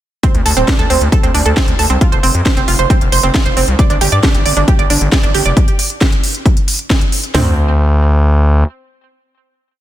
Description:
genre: uplifting trance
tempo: 135 BPM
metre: 4/4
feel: straight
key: unclear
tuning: A4 = 440 Hz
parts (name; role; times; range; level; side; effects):
- analog pluck; arpeggios; 0.2-7.6 s; C4 to D5; -17 LUFS; right 4 dB; analog chorus, sidechain pumping, tape echo
- techno drum kit; drums; 0.2-7.4 s; hi-hat, kick drum, snare drum, toms; -13 LUFS; equal; overdrive, small room ambience
- techno drum kit; drums; 0.2-7.3 s; hi-hat, snare drum; -18 LUFS; equal; overdrive, small room ambience
- gritty driven synth bass; bass; 0.3-8.6 s; D1 to G2; -13 LUFS; equal; distortion, sidechain pumping
room: little or no reverb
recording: dense, heavily limited modern master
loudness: -10 LUFS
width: side -13 dB against mid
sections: 0.2-7.3 drop; 7.3-9.8 final chord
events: drop 0.2-7.3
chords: 0.2 D5; 2.0 F5; 3.8 G5; 5.6 N.C.; 7.3 Csus2/D

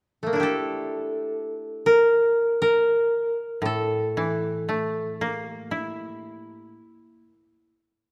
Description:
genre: japanese traditional, Japanese chamber music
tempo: free time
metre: none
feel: none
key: A in sen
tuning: A4 = 440 Hz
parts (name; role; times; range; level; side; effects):
- koto; melody; 0.2-6.6 s; A3 to Bb4; -24 LUFS; equal; none
- koto; accompaniment; 3.6-7.7 s; A2 to E4; -31 LUFS; equal; none
room: moderate scoring stage reverb, RT60 1.9 s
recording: dark, warm production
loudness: -24 LUFS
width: mono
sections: 0.0-8.1 A section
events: none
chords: none

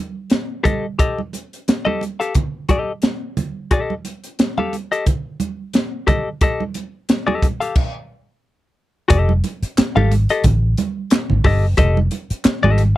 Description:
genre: funk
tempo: 89 BPM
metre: 4/4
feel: swing 56% on 16ths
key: F mixolydian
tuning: A4 = 439 Hz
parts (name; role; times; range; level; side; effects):
- crisp fusion drum kit; drums; 0.3-13.0 s; crash cymbal, handclaps, hi-hat, kick drum, snare drum; -18 LUFS; equal; none
- semi-hollow electric guitar; accompaniment; 0.6-12.8 s; G4 to F5; -19 LUFS; left 4 dB; none
- congas; percussion; 0.7-13.0 s; none; -25 LUFS; right 5 dB; none
- vintage muted fingered electric bass; bass; 9.1-12.9 s; F1 to A1; -16 LUFS; equal; none
room: little or no reverb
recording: none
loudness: -16 LUFS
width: side -15 dB against mid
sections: 0.0-9.1 A section; 9.1-13.0 B section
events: stop 7.8-9.1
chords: 0.0 F9 (rootless); 9.1 F9

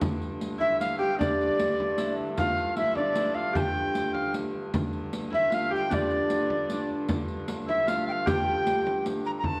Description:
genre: medieval dance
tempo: 102 BPM (dotted quarters)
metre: 6/8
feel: straight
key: unclear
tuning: A4 = 440 Hz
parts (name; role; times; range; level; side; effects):
- Celtic harp; second line; 0.0-9.6 s; D4 to G4; -34 LUFS; equal; none
- warm hurdy-gurdy; drone; 0.0-9.6 s; G2 to D3; -38 LUFS; equal; none
- frame drum; percussion; 0.0-9.6 s; none; -36 LUFS; equal; none
- riq; percussion; 0.0-9.3 s; none; -38 LUFS; equal; none
- mellow tenor recorder; melody; 0.6-9.6 s; D5 to Bb5; -30 LUFS; equal; none
- clear shawm; second line; 0.6-9.0 s; D5 to G5; -37 LUFS; equal; none
room: wet recital hall reverb, RT60 1.6 s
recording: worn, warbling old tape, cassette tape, warbly pitch drift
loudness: -27 LUFS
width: mono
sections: 0.0-9.4 A section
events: none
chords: none

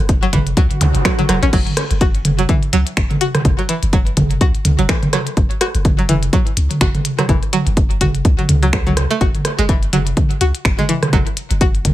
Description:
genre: minimal techno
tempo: 125 BPM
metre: 4/4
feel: swing 57% on 16ths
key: unclear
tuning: A4 = 440 Hz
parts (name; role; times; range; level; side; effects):
- punchy sub bass; bass; 0.0-11.9 s; E1 to C#2; -18 LUFS; equal; sidechain pumping
- electronic kick drum; drums; 0.1-11.9 s; none; -16 LUFS; equal; none
- minimal click drum kit; drums; 0.1-11.9 s; crash cymbal, finger snaps, hi-hat; -23 LUFS; left 3 dB; none
- string-like resonator pluck; riff; 0.2-11.7 s; E3 to F#4; -21 LUFS; equal; chorus, sidechain pumping, tape echo
- booming analog drum machine; percussion; 0.3-11.9 s; rim click, toms; -19 LUFS; right 1 dB; none
- swell and zap; sound effects; 0.7-1.5 s; none; -25 LUFS; right 2 dB; none
room: digital ambience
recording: none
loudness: -13 LUFS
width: side -14 dB against mid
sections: 0.0-11.9 A section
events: swell 0.7-1.5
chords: 0.0 F#5

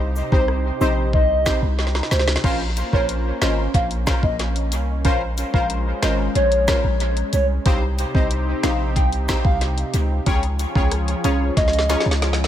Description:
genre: dancehall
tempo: 92 BPM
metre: 4/4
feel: straight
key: C phrygian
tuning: A4 = 440 Hz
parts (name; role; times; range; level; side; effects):
- warm analog pad; sustained chords; 0.0-12.5 s; C3 to Ab4; -30 LUFS; equal; chorus, sidechain pumping
- warm 808-style bass; bass; 0.0-12.4 s; Ab1 to Db2; -22 LUFS; equal; none
- cabasa and woodblock; percussion; 0.2-12.0 s; none; -36 LUFS; equal; dub echo
- hollow clarinet-like synth lead; melody; 0.3-12.0 s; C5 to G5; -25 LUFS; equal; chorus, phaser, dub echo
- synth brass stab; accompaniment; 0.3-12.1 s; C4 to Db5; -26 LUFS; equal; chorus, dub echo
- island pop drum kit; drums; 0.3-12.5 s; crash cymbal, hi-hat, kick drum, rim click, snare drum; -22 LUFS; equal; dub echo
room: light reverb, digital ambience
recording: echo-heavy mix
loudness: -17 LUFS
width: side -11 dB against mid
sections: 0.0-12.5 A section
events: break 0.0-2.4; drum fill 1.8-2.4, 11.6-12.5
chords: 0.0 Cm; 2.4 Bbmadd9; 7.7 Cm; 10.3 Db

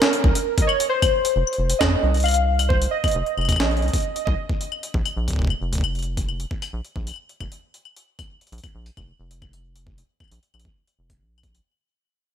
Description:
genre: IDM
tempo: 134 BPM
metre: 4/4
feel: straight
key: unclear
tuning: A4 = 440 Hz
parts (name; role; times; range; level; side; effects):
- warbly lo-fi synth keys; melody; 0.0-4.4 s; Bb4 to F5; -23 LUFS; equal; chorus, vintage 12-bit sampler grit, digital delay
- jungle sampler-style drum kit; drums; 0.0-11.6 s; claves, hi-hat, snare drum; -25 LUFS; left 1 dB; overdrive, gated reverb
- rubbery square bass; bass; 0.2-11.6 s; F1 to F2; -23 LUFS; equal; none
- electronic kick drum; drums; 0.2-11.5 s; none; -23 LUFS; equal; overdrive
room: light reverb, digital ambience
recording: bright 1980s-style digital production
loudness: -19 LUFS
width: side -9 dB against mid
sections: 0.0-11.7 A section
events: fade-out 0.0-11.7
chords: 0.0 F7(no3); 4.5 Bb5

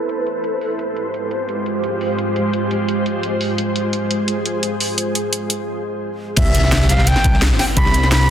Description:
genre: liquid drum and bass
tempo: 172 BPM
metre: 4/4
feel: straight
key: unclear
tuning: A4 = 440 Hz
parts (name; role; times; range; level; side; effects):
- ethereal airy pad; sustained chords; 0.0-8.3 s; G3 to C5; -20 LUFS; right 1 dB; ensemble chorus, built-in reverb, tremolo, sidechain pumping
- drum and bass drum kit; drums; 0.1-8.2 s; crash cymbal, hi-hat, snare drum; -21 LUFS; equal; overdrive
- breathy bright concert flute; melody; 6.4-8.3 s; E5 to B5; -20 LUFS; equal; none
- dark detuned saw bass; bass; 6.4-8.3 s; G1 to C2; -16 LUFS; equal; tube saturation
- crunchy breakbeat drum kit; drums; 6.4-8.3 s; ride cymbal, snare drum; -26 LUFS; equal; high-pass filter on cymbals, high-pass filter on snare, high-pass filter on room
- electronic kick drum; drums; 6.4-7.8 s; none; -17 LUFS; equal; overdrive
- impact; sound effects; 6.4-7.8 s; none; -22 LUFS; equal; none
room: light reverb, small room reverb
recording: dense, heavily limited modern master, low-pass filter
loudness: -16 LUFS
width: side -9 dB against mid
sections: 0.0-6.4 A section; 6.4-8.3 B section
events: filter sweep 0.0-6.4; break 5.7-6.4; drop 6.4-8.3; impact 6.4-7.8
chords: 0.0 Cmaj7; 0.6 Fmadd9; 6.4 Cmaj7

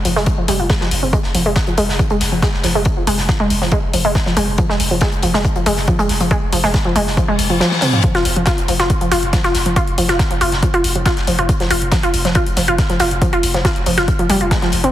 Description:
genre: driving peak-time techno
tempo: 139 BPM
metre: 4/4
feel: straight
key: F minor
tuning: A4 = 440 Hz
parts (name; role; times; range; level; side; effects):
- saturated sub bass; bass; 0.0-14.9 s; F1; -22 LUFS; equal; overdrive, sidechain pumping, low-pass filter
- wide unison pluck; riff; 0.1-14.9 s; F3 to F4; -17 LUFS; equal; sidechain pumping, dub echo
- big rock drum kit; drums; 0.1-14.8 s; hi-hat, snare drum; -25 LUFS; left 1 dB; sidechain pumping on hats, high-pass filter on hats, high-pass filter on snare, high-pass filter on room
- punchy analog drum machine; drums; 0.1-14.9 s; hi-hat, toms; -23 LUFS; left 2 dB; overdrive, sidechain pumping on hats, sidechain pumping on toms
- electronic kick drum; drums; 0.3-14.6 s; none; -17 LUFS; equal; overdrive
- reverse cymbal; sound effects; 7.3-8.0 s; none; -23 LUFS; left 5 dB; none
room: light reverb, small room ambience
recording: heavily compressed radio sound, multiband compression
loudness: -13 LUFS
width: side -12 dB against mid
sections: 0.0-14.9 A section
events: filter sweep on synth arpeggio sound 0.0-14.9; reverse cymbal 7.3-8.0; drum fill 7.7-8.0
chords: 0.0 F5

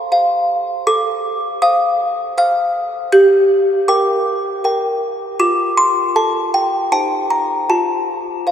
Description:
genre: classical, lullaby for music box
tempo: 80 BPM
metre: 3/4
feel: straight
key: unclear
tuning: A4 = 440 Hz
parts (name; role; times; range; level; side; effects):
- music box; solo; 0.0-8.5 s; Eb4 to G6; -14 LUFS; equal; none
room: wet cathedral reverb, RT60 5.7 s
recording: recorded in a church or concert hall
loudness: -14 LUFS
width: side -9 dB against mid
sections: 0.0-8.5 A section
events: none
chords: 0.0 F/A; 3.1 Gm; 5.4 F69; 6.9 Cm/Eb; 7.7 F

